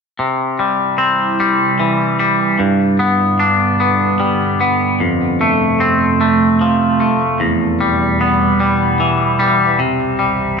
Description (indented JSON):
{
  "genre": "rock",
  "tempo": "50 BPM (dotted quarters)",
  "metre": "6/8",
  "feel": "straight",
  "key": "unclear",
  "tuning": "A4 = 440 Hz",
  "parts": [
    { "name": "deep dark ambient pad", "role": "sustained chords", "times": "1.0-10.6 s", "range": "C2 to E4", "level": "-18 LUFS", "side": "right 4 dB", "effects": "chorus, built-in reverb" },
    { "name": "twangy electric guitar", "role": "arpeggios", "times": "0.2-10.6 s", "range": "E2 to D4", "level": "-13 LUFS", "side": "left 2 dB", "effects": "wide subtle chorus, analog delay" }
  ],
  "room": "wet large studio reverb, RT60 0.8 s",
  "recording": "nothing above 11.0 kHz",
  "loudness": "-12 LUFS",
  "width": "side -5 dB against mid",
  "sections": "0.2-9.8 A section",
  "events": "none",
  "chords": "0.2 C; 2.6 G; 5.0 F; 7.4 Em; 9.8 C"
}